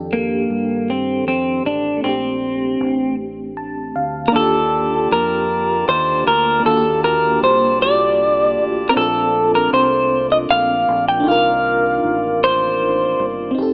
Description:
slow six-eight R&B; 52 BPM (dotted quarters); 6/8; straight; A4 = 440 Hz
FM electric piano with tremolo; accompaniment; 0.0-13.7 s; Eb3 to A5; -21 LUFS; equal; phaser
deep dub fingered electric bass; bass; 0.0-13.7 s; F1 to G2; -30 LUFS; equal
clean electric guitar; melody; 0.1-13.2 s; Bb3 to G5; -15 LUFS; equal; lush chorus
tonewheel organ; sustained chords; 4.3-13.5 s; C3 to A5; -26 LUFS; equal; stopped rotary speaker
moderate echo chamber reverb, RT60 1.5 s, digital ambience; AM radio sound; -14 LUFS; side -30 dB against mid
0.0-4.3 A section; 4.3-13.6 B section
FM electric piano fill 3.2-4.3
0.0 F13; 2.0 Bbmaj13; 4.3 Ebmaj9#11; 8.9 Bbmaj9; 11.3 Cm11

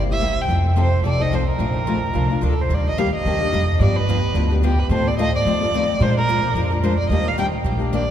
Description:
acoustic string swing (jazz manouche); 218 BPM; 4/4; swing 58% on 8ths; Eb major; A4 = 440 Hz
dark violin; melody; 0.0-8.1 s; G4 to G5; -23 LUFS; right 1 dB
picked steel-string acoustic guitar; accompaniment; 0.0-8.0 s; C3 to Bb4; -24 LUFS; left 3 dB
upright bass; bass; 0.0-8.1 s; G1 to F3; -20 LUFS; equal
wet cathedral reverb, RT60 6.1 s; recorded in a church or concert hall; -17 LUFS; side -10 dB against mid
0.0-2.7 A section; 2.7-8.1 B section
0.5 F7; 1.6 Bbmaj7; 2.7 Ebmaj7; 3.8 G7; 4.9 F7/A; 6.0 Bb7; 7.1 Ebmaj7

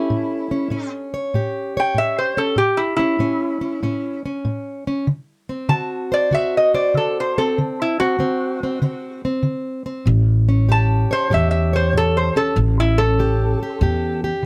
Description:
acoustic country blues, solo or duo; 96 BPM; 4/4; swing 67% on 8ths; A mixolydian; A4 = 440 Hz
lap resonator guitar; melody; 0.0-14.2 s; E4 to A5; -22 LUFS; equal
fingerpicked plugged-in steel-string acoustic guitar; accompaniment; 0.0-14.5 s; A2 to C#5; -25 LUFS; equal
upright bass; bass; 10.1-14.3 s; A1 to E2; -20 LUFS; equal
light reverb; -20 LUFS; mono
0.0-14.5 A section
resonator guitar played with a steel bar solo 0.0-14.5
0.0 A7; 5.1 D7; 10.1 A7

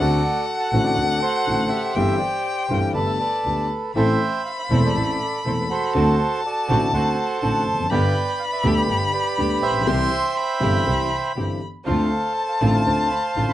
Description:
tango; 121 BPM; 4/4; rubato; A4 = 441 Hz
bandoneon; melody; 0.0-13.5 s; F#4 to C6; -24 LUFS; right 3 dB
rich violin; second line; 0.0-13.5 s; F#5 to C6; -25 LUFS; left 2 dB
warm concert grand piano; accompaniment; 0.0-13.5 s; E1 to A4; -23 LUFS; left 2 dB
dark double bass; bass; 0.0-13.5 s; E1 to D2; -25 LUFS; right 1 dB
bright symphonic string section; stabs; 4.0-13.5 s; B3 to A4; -32 LUFS; right 2 dB
moderate small room reverb, RT60 0.5 s; rough home demo mix, nothing above 10.8 kHz; -19 LUFS; side -13 dB against mid
0.0-13.5 A section
0.0 D7; 2.0 C/G; 3.0 Gadd9; 4.0 Am; 6.0 D7; 7.9 G; 9.9 C; 11.9 Dm7

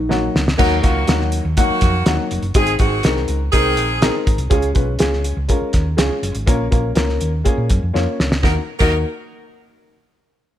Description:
uptempo 1960s-style soul; 122 BPM; 4/4; straight; Eb minor; A4 = 440 Hz
hollow-body short-scale fingered electric bass; bass; 0.0-9.0 s; F1 to Bb2; -21 LUFS; equal
dark upright piano; accompaniment; 0.1-9.0 s; Gb3 to Db5; -21 LUFS; left 2 dB
cloth-damped thuddy drum kit; drums; 0.1-8.9 s; crash cymbal, hi-hat, kick drum, snare drum; -18 LUFS; equal
clear saxophone section; second line; 0.6-4.2, 8.4-9.0 s; Eb3 to Bb4; -21 LUFS; right 2 dB
light reverb; -15 LUFS; side -11 dB against mid
0.6-8.4 A section; 8.4-10.4 B section
drum fill 0.1-0.6, 7.9-8.4
0.0 Ebm; 2.5 Ab; 4.5 Db; 6.5 Bbm; 8.4 Ebm

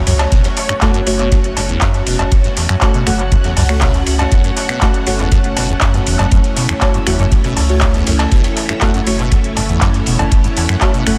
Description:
acid house; 120 BPM; 4/4; straight; F# minor; A4 = 440 Hz
string machine, full ensemble; sustained chords; 0.0-11.2 s; A3 to F#5; -24 LUFS; equal; ensemble chorus, sidechain pumping
liquid acid bass; riff; 0.0-11.1 s; E2 to B2; -22 LUFS; equal; phaser, lush chorus, dub echo
deep mellow chord stab; stabs; 0.0-11.1 s; A3 to F#5; -25 LUFS; equal; chorus, cassette tape, dub echo
saturated sub bass; bass; 0.0-11.2 s; E1 to F#2; -21 LUFS; equal; tube saturation, sidechain pumping
crunchy breakbeat drum kit; drums; 0.1-11.2 s; hi-hat, ride cymbal, snare drum; -32 LUFS; equal
electro analog drum machine; drums; 0.1-11.2 s; cowbell, finger snaps, handclaps, hi-hat; -22 LUFS; equal; dub echo
electronic kick drum; drums; 0.3-10.9 s; -17 LUFS; equal
light reverb; echo-heavy mix; -14 LUFS; mono
0.0-11.2 A section
0.0 F#m

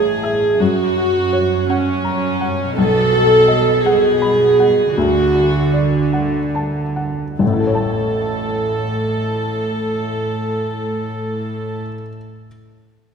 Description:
cinematic, emotional film score for orchestra; 46-56 BPM (dotted quarters); 6/8; rubato; A major; A4 = 440 Hz
felt-muted upright piano; accompaniment; 0.0-12.5 s; A1 to B5; -21 LUFS; left 3 dB
rich chamber viola section; accompaniment; 0.0-11.8 s; C#4 to A4; -17 LUFS; right 1 dB
warm studio cello section; bass; 0.0-11.8 s; F#2 to D3; -22 LUFS; right 3 dB
wet scoring stage reverb, RT60 1.7 s; minimal, uncompressed stereo recording; -15 LUFS; side -6 dB against mid
0.0-7.4 A section; 7.4-12.5 B section
slowing down 1.7-7.4
0.0 A; 0.6 F#; 2.8 B; 5.0 D; 7.4 A

